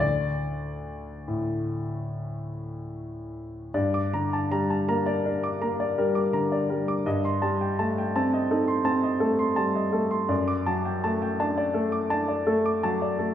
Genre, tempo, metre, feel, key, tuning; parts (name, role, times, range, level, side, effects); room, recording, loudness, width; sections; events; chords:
classical, romantic nocturne for solo piano; 47-57 BPM (dotted quarters); 9/8; rubato; G minor from 3.7 s; A4 = 440 Hz
clear grand piano; solo; 0.0-13.3 s; D2 to D6; -24 LUFS; equal
wet recital hall reverb, RT60 1.3 s; -24 LUFS; side -10 dB against mid
0.0-3.7 A section; 3.7-13.3 B section
0.0 D5; 3.7 Gm; 7.0 Am7b5/G; 10.3 D/F#